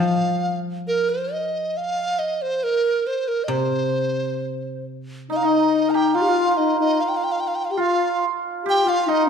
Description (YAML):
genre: chinese traditional, Chinese chamber ensemble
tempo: 65-73 BPM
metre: 2/4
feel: rubato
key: unclear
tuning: A4 = 443 Hz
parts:
  - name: mellow hollow large dizi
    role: melody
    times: 0.0-9.3 s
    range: Bb4 to Bb5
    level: -22 LUFS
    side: right 2 dB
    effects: none
  - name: guzheng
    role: accompaniment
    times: 0.0-6.1 s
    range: C3 to G3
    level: -26 LUFS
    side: left 2 dB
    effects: none
  - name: hammered dulcimer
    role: second line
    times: 5.3-9.3 s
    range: Eb4 to Bb4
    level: -22 LUFS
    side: right 4 dB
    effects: none
  - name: low xiao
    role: second line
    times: 5.3-9.3 s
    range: Eb4 to G4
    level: -22 LUFS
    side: left 7 dB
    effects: none
room: wet recital hall reverb, RT60 1.4 s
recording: dark, warm production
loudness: -19 LUFS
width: side -6 dB against mid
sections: 0.0-5.3 A section; 5.3-9.3 B section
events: none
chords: none